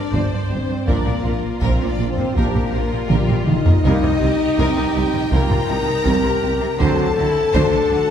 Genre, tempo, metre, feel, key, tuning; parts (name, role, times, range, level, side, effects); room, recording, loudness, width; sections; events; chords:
cinematic, epic orchestral film score; 81 BPM; 4/4; straight; C minor; A4 = 441 Hz
clear symphonic violin section; melody; 0.0-8.1 s; G4 to Bb5; -29 LUFS; left 3 dB
rich symphonic violin section; second line; 0.0-8.1 s; F4 to G5; -30 LUFS; left 2 dB
clear symphonic viola section; accompaniment; 0.0-8.1 s; F#3 to D5; -29 LUFS; right 1 dB
mellow French horn section; sustained chords; 0.0-8.1 s; G3 to Bb4; -21 LUFS; left 3 dB
rich symphonic cello section; bass; 0.0-8.0 s; G2 to D3; -26 LUFS; right 2 dB
mellow tuba; bass; 0.1-8.0 s; G1 to D2; -25 LUFS; right 2 dB
rich symphonic double bass section; bass; 0.1-8.0 s; G1 to D2; -24 LUFS; right 2 dB
taiko ensemble; drums; 0.1-8.1 s; -22 LUFS; equal
bright trombone section; sustained chords; 0.9-7.1 s; F3 to D4; -30 LUFS; right 3 dB
wet scoring stage reverb, RT60 2.0 s; heard from further back in the room; -16 LUFS; side -8 dB against mid
0.0-8.1 A section
drum fill 3.1-3.8
0.0 Gsus4; 0.9 Bb; 3.8 Cm7; 6.8 D7